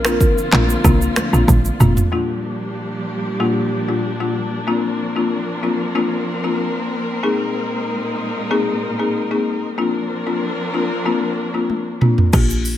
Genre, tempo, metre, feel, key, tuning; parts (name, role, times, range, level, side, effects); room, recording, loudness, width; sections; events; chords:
afrobeats; 94 BPM; 4/4; straight; Bb mixolydian; A4 = 439 Hz
hollow clarinet-like synth lead; melody; 0.0-1.4 s; Bb4; -24 LUFS; equal; chorus, tremolo, digital delay
warm studio string section; sustained chords; 0.0-12.3 s; Bb2 to Bb4; -23 LUFS; equal
woody log drum bass; bass; 0.0-2.0, 12.3-12.8 s; F1 to C2; -16 LUFS; right 1 dB
afro-pop drum kit; drums; 0.0-2.1, 11.7-12.8 s; crash cymbal, finger snaps, handclaps, hi-hat, kick drum, rim click, shaker, toms; -16 LUFS; right 1 dB
folk marimba with medium mallets; accompaniment; 0.1-12.8 s; Bb2 to Ab4; -20 LUFS; left 4 dB
congas; percussion; 0.2-2.0 s; -26 LUFS; right 3 dB
digital ambience; -16 LUFS; side -12 dB against mid
0.0-2.1 A section; 2.1-12.3 B section
drum fill 1.5-2.1, 11.7-12.3
0.0 Bbadd9; 2.1 Gm7/Bb; 4.7 Bbadd9; 7.2 Abadd9/Bb; 9.8 Bbadd9